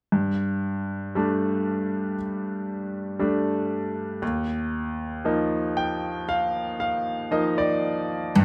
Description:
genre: pop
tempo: 58 BPM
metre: 4/4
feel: straight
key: G minor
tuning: A4 = 440 Hz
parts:
  - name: bright grand piano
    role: accompaniment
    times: 0.1-8.4 s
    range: Eb2 to G5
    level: -26 LUFS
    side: equal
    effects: none
  - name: picked steel-string acoustic guitar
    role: arpeggios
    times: 8.4 s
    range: G2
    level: -23 LUFS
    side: equal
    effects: none
room: wet studio reverb, RT60 0.6 s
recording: rough home demo mix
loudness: -27 LUFS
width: mono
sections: 0.1-8.4 A section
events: grand piano fill 5.2-8.4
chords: 0.1 Gsus2; 4.2 Ebsus2

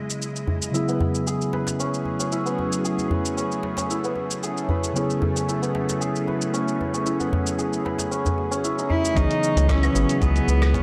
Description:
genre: organic downtempo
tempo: 114 BPM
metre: 4/4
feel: swing 53% on 16ths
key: unclear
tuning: A4 = 440 Hz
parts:
  - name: tine electric piano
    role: accompaniment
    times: 0.0-10.8 s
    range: C#3 to G#4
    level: -30 LUFS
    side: equal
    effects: sidechain pumping, delay
  - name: bowed-like drone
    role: sustained chords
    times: 0.0-10.8 s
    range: C#3 to D#5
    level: -32 LUFS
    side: equal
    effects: built-in reverb, phaser, sidechain pumping
  - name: dusty soul sampler-style drum kit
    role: drums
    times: 0.1-10.8 s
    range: claves, hi-hat, rim click, shaker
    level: -33 LUFS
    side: equal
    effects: none
  - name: djembe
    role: percussion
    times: 0.5-9.1 s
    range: none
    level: -31 LUFS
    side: equal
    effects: none
  - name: santur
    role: arpeggios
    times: 0.7-10.8 s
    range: B3 to B4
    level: -30 LUFS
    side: equal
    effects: delay
  - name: warm cello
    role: melody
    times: 8.9-10.8 s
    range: B3 to E4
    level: -26 LUFS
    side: equal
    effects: digital delay
  - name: round analog bass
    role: bass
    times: 9.2-10.8 s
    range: G#1 to C#2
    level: -22 LUFS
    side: equal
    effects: sidechain pumping
  - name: electronic kick drum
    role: drums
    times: 9.2-10.8 s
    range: none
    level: -28 LUFS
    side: equal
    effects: none
room: moderate lush hall reverb, RT60 2.1 s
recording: dark, warm production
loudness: -24 LUFS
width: mono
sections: 0.0-9.2 A section; 9.2-10.8 B section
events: none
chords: 0.0 C#m7; 0.7 F#m7; 9.2 C#m7

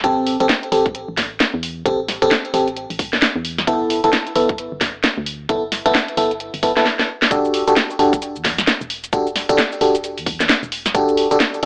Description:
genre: UK garage, two-step garage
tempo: 132 BPM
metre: 4/4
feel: swing 61% on 16ths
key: E minor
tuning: A4 = 439 Hz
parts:
  - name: FM electric piano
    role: stabs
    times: 0.0-11.7 s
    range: B3 to A4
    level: -17 LUFS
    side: equal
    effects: chorus, phaser, digital delay
  - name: organ-like FM bass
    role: bass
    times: 0.0-11.7 s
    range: E1 to E2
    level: -32 LUFS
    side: equal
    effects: tube saturation
  - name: electronic kick drum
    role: drums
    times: 0.0-11.1 s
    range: none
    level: -23 LUFS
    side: equal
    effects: none
  - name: garage drum kit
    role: drums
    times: 0.0-11.7 s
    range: cabasa, hi-hat, snare drum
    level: -18 LUFS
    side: equal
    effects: none
room: light reverb, digital ambience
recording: AM radio sound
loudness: -15 LUFS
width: side -33 dB against mid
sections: 0.0-7.3 A section; 7.3-11.7 B section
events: drum fill 6.9-7.3; drop 7.3-11.7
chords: 0.0 Am7; 3.7 G69; 7.3 Em11

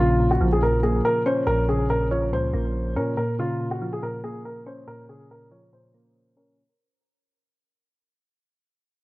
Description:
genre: hip hop, trap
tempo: 141 BPM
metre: 4/4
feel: half-time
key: Bb minor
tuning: A4 = 440 Hz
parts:
  - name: dark grand piano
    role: melody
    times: 0.0-6.5 s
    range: F4 to Db5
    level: -25 LUFS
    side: equal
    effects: low-pass filter, tape echo
  - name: soft electric-piano-like synth keys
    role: accompaniment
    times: 0.0-6.6 s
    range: Bb2 to Db4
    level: -26 LUFS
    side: equal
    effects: chorus, low-pass filter
  - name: long sustained 808-style bass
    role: bass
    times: 0.0-3.2 s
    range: Bb1 to Bb2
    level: -25 LUFS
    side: equal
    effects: none
room: small room ambience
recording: dry, gritty hardware recording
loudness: -21 LUFS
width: side -19 dB against mid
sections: 0.0-6.6 A section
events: fade-out 0.0-6.6; filter sweep 0.0-6.6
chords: 0.0 Bbm

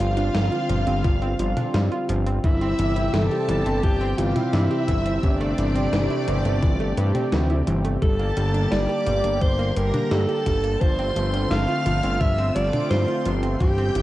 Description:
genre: synthwave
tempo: 86 BPM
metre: 4/4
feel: straight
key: unclear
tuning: A4 = 440 Hz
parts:
  - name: breathy alto saxophone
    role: melody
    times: 0.0-14.0 s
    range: D4 to F5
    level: -26 LUFS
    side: equal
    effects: cassette tape, tape echo
  - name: string machine, violins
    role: second line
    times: 0.0-14.0 s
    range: D5 to F6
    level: -33 LUFS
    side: equal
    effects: ensemble chorus, cassette tape, tape echo
  - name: warm analog pad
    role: sustained chords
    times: 0.0-14.0 s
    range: C3 to G4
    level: -28 LUFS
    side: equal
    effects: chorus, sidechain pumping, cassette tape
  - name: analog pluck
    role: arpeggios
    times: 0.0-14.0 s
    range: E3 to G4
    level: -30 LUFS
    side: right 1 dB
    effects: chorus, cassette tape, tape echo
  - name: fat analog bass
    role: bass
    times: 0.0-14.0 s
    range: G1 to G2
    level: -24 LUFS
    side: equal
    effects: sidechain pumping
  - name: gated 80s digital drum machine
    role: drums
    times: 0.0-14.0 s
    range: hi-hat, snare drum, toms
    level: -30 LUFS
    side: equal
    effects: gated reverb, gated reverb snare, cassette tape
  - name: electronic kick drum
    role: drums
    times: 1.0-13.7 s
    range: none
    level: -22 LUFS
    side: equal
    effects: cassette tape
room: light reverb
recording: home recording on cassette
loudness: -20 LUFS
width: side -15 dB against mid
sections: 0.0-14.0 A section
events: none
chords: 0.0 Dm7/G; 2.4 C/G; 5.2 Am7/G; 8.0 Gmadd9; 10.8 Dm7/G

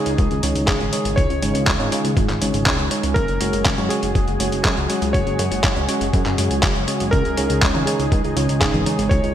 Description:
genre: italo disco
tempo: 121 BPM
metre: 4/4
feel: straight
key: Db major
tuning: A4 = 439 Hz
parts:
  - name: warm electric grand piano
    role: melody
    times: 0.0-9.3 s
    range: Ab4 to Db5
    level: -26 LUFS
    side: left 1 dB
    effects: ping-pong delay
  - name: lush unison pad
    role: sustained chords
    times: 0.0-9.3 s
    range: Db3 to Ab4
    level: -25 LUFS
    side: equal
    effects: chorus
  - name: tine electric piano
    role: stabs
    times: 0.0-9.2 s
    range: Db3 to Db5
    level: -25 LUFS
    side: right 2 dB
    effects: overdrive, ping-pong delay
  - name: chorused synth bass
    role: bass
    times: 0.1-9.3 s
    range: Gb1 to Gb2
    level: -24 LUFS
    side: equal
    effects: tube saturation
  - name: dusty soul sampler-style drum kit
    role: drums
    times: 0.1-9.3 s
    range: congas, handclaps, hi-hat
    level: -23 LUFS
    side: left 1 dB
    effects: overdrive
  - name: electronic kick drum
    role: drums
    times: 0.2-9.2 s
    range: none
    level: -21 LUFS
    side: equal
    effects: overdrive
room: light reverb, digital ambience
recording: bright 1980s-style digital production, lossy compression artefacts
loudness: -17 LUFS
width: side -10 dB against mid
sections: 0.0-9.3 A section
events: none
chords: 0.0 Dbsus2; 3.2 Gbsus2; 7.1 Dbsus2

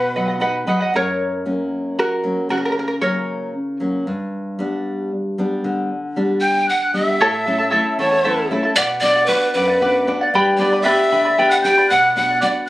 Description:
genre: andean folk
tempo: 77 BPM (dotted quarters)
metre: 6/8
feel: straight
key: unclear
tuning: A4 = 440 Hz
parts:
  - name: breathy mellow polished pan flute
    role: melody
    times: 0.0-0.6, 6.4-12.5 s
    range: B4 to G5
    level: -18 LUFS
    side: equal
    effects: tape echo
  - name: breathy bright quena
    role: second line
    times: 0.0-0.6, 6.4-12.7 s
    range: B5 to G6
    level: -23 LUFS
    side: equal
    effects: none
  - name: charango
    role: accompaniment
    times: 0.0-3.8, 7.2-12.7 s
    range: E4 to B5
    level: -19 LUFS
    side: equal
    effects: none
  - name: nylon-string guitar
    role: accompaniment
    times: 0.0-12.7 s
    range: E2 to D#5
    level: -22 LUFS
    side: left 1 dB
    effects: none
room: moderate studio reverb, RT60 0.6 s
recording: recorded on a phone in the room, studio ambience, compression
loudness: -16 LUFS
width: side -16 dB against mid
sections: 0.9-7.2 A section; 7.2-12.7 B section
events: nylon-string guitar fill 0.1-0.9; charango solo 0.9-7.2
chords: 0.0 B; 0.9 F#; 4.1 G; 7.2 A; 8.8 Bm; 10.3 G; 11.9 Bm

